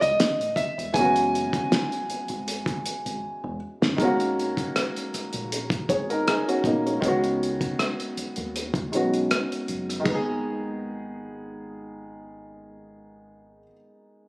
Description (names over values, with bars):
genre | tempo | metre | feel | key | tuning
R&B, neo-soul | 79 BPM | 4/4 | swing 53% on 16ths | G# minor | A4 = 440 Hz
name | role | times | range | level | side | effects
clear grand piano | melody | 0.0-3.6 s | D#5 to G#5 | -25 LUFS | right 1 dB | none
warm upright piano | accompaniment | 0.0-14.3 s | D#3 to C#5 | -26 LUFS | equal | none
deep dub fingered electric bass | bass | 0.0-13.7 s | E1 to D#2 | -36 LUFS | equal | none
cloth-damped thuddy drum kit | drums | 0.0-10.2 s | hi-hat, kick drum, rim click, snare drum, splash cymbal, toms | -27 LUFS | equal | none
room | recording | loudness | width
moderate echo chamber reverb, RT60 2.2 s | recorded on a phone in the room, studio ambience, compression | -23 LUFS | side -24 dB against mid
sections
0.0-4.0 A section; 4.0-10.1 B section; 10.1-13.1 C section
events
drum fill 3.2-4.0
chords
0.0 B9sus4; 0.9 F#9sus4; 4.0 G#9sus4; 7.0 C#9sus4; 10.1 G#m